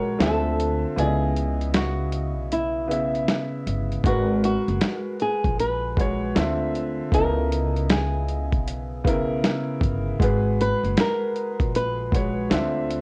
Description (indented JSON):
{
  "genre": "lo-fi hip hop",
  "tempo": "78 BPM",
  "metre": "4/4",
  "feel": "swing 64% on 16ths",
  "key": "C# dorian",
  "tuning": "A4 = 441 Hz",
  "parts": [
    { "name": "flamenco guitar", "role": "melody", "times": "0.0-13.0 s", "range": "E4 to B4", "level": "-29 LUFS", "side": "equal", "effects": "low-pass filter" },
    { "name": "clear upright piano", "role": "accompaniment", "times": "0.0-13.0 s", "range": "C#3 to E5", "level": "-29 LUFS", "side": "equal", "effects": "low-pass filter" },
    { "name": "upright bass", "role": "bass", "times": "0.0-13.0 s", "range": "F#1 to D2", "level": "-29 LUFS", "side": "equal", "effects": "none" },
    { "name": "dusty soul sampler-style drum kit", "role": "drums", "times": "0.2-13.0 s", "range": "hi-hat, kick drum, snare drum", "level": "-26 LUFS", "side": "equal", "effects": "overdrive, vintage 12-bit sampler grit" }
  ],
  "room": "moderate studio reverb, RT60 0.5 s",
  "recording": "worn, warbling old tape, cassette tape, warbly pitch drift",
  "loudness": "-24 LUFS",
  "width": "mono",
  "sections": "0.0-4.0 A section; 4.0-13.0 A section",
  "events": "kick muted 1.0-4.0",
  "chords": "0.2 Dm9; 1.0 C#m9; 4.0 G#m9; 6.3 Dm9; 7.1 C#m9; 10.2 G#m9; 12.5 Dm9",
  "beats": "0.20 | 0.96 1.73 2.50 3.27 | 4.04 4.81 5.58 6.35 | 7.12 7.89 8.66 9.43 | 10.20 10.96 11.73 12.50"
}